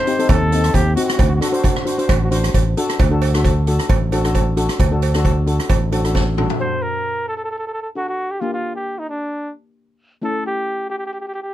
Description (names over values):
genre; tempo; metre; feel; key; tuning
calypso; 133 BPM; 4/4; swing 53% on 16ths; unclear; A4 = 440 Hz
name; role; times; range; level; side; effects
clear flugelhorn; melody; 0.0-2.4, 6.6-11.5 s; D4 to C5; -23 LUFS; equal; none
steel pan; accompaniment; 0.1-11.5 s; A3 to C5; -23 LUFS; left 2 dB; none
street-band drum kit; drums; 0.1-6.6 s; hi-hat, kick drum, rim click, snare drum, toms; -20 LUFS; equal; none
fingered electric bass; bass; 0.3-6.5 s; A1 to Eb2; -18 LUFS; equal; none
cowbell; percussion; 0.3-6.3 s; none; -26 LUFS; right 10 dB; none
room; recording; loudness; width
light reverb; none; -16 LUFS; side -13 dB against mid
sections
0.0-3.0 A section; 3.0-6.6 B section; 6.6-11.5 C section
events
drum fill 6.1-6.6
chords
0.0 Adim; 1.2 D; 6.6 D7; 8.4 Gm; 10.2 A7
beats
0.29 0.74 | 1.19 1.64 2.09 2.54 | 2.99 3.44 3.89 4.34 | 4.79 5.24 5.70 6.15 | 6.60 7.05 7.50 7.96 | 8.41 8.87 9.32 9.77 | 10.22 10.68 11.13